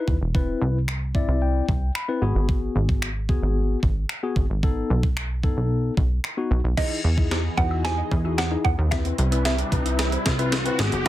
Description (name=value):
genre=dance-pop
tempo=112 BPM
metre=4/4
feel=straight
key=E major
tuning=A4 = 440 Hz
part: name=mellow tine electric piano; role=accompaniment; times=0.0-11.1 s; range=B3 to B5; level=-28 LUFS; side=left 5 dB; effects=sidechain pumping, plate reverb
part: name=plucky analog bass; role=bass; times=0.1-11.1 s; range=E1 to G2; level=-23 LUFS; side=equal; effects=sidechain pumping
part: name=crisp 8-bit digital drum machine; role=drums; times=0.1-11.1 s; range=crash cymbal, finger snaps, hi-hat, kick drum, snare drum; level=-24 LUFS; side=equal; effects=soft clipping on snare
part: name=mallet-like synth pluck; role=melody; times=6.8-10.5 s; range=D#5 to G#5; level=-29 LUFS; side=right 4 dB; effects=chorus, phaser, ping-pong delay
part: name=lush unison pad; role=sustained chords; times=6.8-11.1 s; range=C3 to D#5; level=-34 LUFS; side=equal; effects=chorus, phaser, sidechain pumping
part: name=resonant blip pluck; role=arpeggios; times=6.8-11.1 s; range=E3 to E5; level=-37 LUFS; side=equal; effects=phaser, sidechain pumping, ping-pong delay, plate reverb
part: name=riser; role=sound effects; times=8.3-11.1 s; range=none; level=-33 LUFS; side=equal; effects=none
room=little or no reverb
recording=dense, heavily limited modern master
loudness=-21 LUFS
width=side -14 dB against mid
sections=0.0-6.8 A section; 6.8-11.1 B section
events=tine electric piano fill 0.9-2.5; build-up 6.8-11.1; drum fill 6.8-11.1; riser 8.3-11.1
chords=0.3 Cmaj7; 2.2 G#m7; 4.6 B7; 6.8 Emaj7; 8.9 Cmaj7